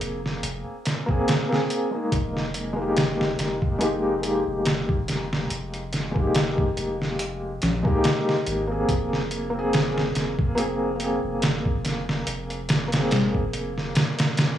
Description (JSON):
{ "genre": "trip hop", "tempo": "71 BPM", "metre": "4/4", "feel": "swing 55% on 16ths", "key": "F minor", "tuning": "A4 = 441 Hz", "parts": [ { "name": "felt-muted upright piano", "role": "accompaniment", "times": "0.0-14.6 s", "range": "Ab3 to Ab4", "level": "-26 LUFS", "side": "equal", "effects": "tremolo, tape echo" }, { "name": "warm sub bass", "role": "bass", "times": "0.0-14.0 s", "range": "F1 to Bb1", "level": "-32 LUFS", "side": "equal", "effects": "tube saturation" }, { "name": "trip hop sampler-style drum kit", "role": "drums", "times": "0.0-14.6 s", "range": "hi-hat, kick drum, snare drum", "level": "-24 LUFS", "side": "equal", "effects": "none" } ], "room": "little or no reverb", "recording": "dry, gritty hardware recording, cassette tape, studio reverb", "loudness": "-22 LUFS", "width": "side -11 dB against mid", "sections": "0.0-14.6 A section", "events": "none", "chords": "0.0 Abadd9/F; 2.1 Fm11" }